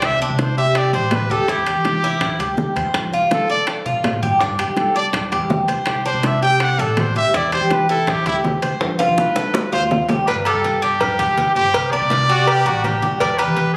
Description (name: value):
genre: latin, Cuban son and guajira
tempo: 164 BPM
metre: 4/4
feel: straight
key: G major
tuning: A4 = 439 Hz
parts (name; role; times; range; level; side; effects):
- bright trumpet; melody; 0.0-13.8 s; E4 to G5; -23 LUFS; equal; none
- Cuban tres; arpeggios; 0.0-13.7 s; D4 to C5; -23 LUFS; equal; none
- upright bass; bass; 0.0-13.8 s; E1 to G3; -27 LUFS; equal; none
- bongos and cowbell; percussion; 0.0-13.7 s; none; -27 LUFS; equal; none
- congas; percussion; 0.0-13.8 s; none; -31 LUFS; equal; none
- timbales and agogo bells; percussion; 0.0-13.6 s; none; -28 LUFS; equal; none
- brilliant trumpet; second line; 12.3-13.1 s; F#4 to G4; -25 LUFS; equal; tape echo
room: light reverb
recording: recorded on a phone in the room, club reverb, compression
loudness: -18 LUFS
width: mono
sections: 0.0-10.3 A section; 10.3-13.8 B section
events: trumpet solo 0.0-10.3; drum fill 8.8-10.3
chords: 0.0 Csus2; 1.5 Em7; 2.9 F; 4.4 G5; 5.9 Csus2; 7.3 Em7; 8.8 F7; 10.3 Gsus2; 11.7 Csus2; 13.2 Em7